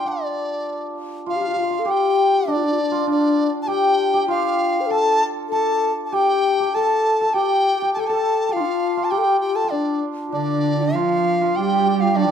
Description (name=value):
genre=chinese traditional, Chinese chamber ensemble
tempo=99 BPM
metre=2/4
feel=rubato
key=D yu mode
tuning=A4 = 440 Hz
part: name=large dizi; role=melody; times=0.0-12.3 s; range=D5 to A5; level=-22 LUFS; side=left 1 dB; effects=none
part: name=hammered dulcimer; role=second line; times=0.0-12.3 s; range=D4 to A4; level=-23 LUFS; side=right 4 dB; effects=none
part: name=breathy mellow low xiao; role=second line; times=1.3-12.3 s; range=D4 to C5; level=-22 LUFS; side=left 6 dB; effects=none
part: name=warm cello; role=second line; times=10.3-12.3 s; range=D3 to G3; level=-21 LUFS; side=right 8 dB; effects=none
room=light reverb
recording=minimal, uncompressed stereo recording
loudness=-17 LUFS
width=side -8 dB against mid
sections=0.0-1.3 A section; 1.3-10.9 B section; 10.9-12.3 A section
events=none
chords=none